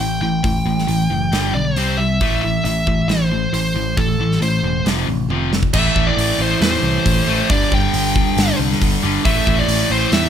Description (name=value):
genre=hard rock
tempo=136 BPM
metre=4/4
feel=straight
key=A minor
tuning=A4 = 440 Hz
part: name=high-gain lead guitar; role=melody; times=0.0-10.3 s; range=A4 to G5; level=-21 LUFS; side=equal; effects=distortion
part: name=distorted electric guitar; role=riff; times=0.0-10.3 s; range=F2 to C4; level=-22 LUFS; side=left 13 dB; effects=overdrive
part: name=overdriven semi-hollow guitar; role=riff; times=0.0-10.3 s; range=F2 to C4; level=-22 LUFS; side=right 12 dB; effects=spring reverb
part: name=picked electric bass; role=bass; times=0.0-10.3 s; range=E1 to E2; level=-21 LUFS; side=equal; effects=none
part: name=big rock drum kit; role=drums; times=0.0-10.2 s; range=crash cymbal, hi-hat, kick drum, snare drum, toms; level=-21 LUFS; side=equal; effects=none
room=light reverb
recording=none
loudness=-15 LUFS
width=side -8 dB against mid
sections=0.0-5.7 A section; 5.7-10.3 B section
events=drum fill 5.3-5.7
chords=0.0 A5; 1.3 G5; 1.8 C5; 2.2 Am; 4.9 F5; 5.7 Am; 7.5 G5; 9.3 Am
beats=0.00 | 0.44 0.89 1.33 1.77 | 2.21 2.65 3.10 3.54 | 3.98 4.42 4.86 5.30 | 5.74 6.18 6.62 7.06 | 7.50 7.94 8.38 8.82 | 9.26 9.69 10.13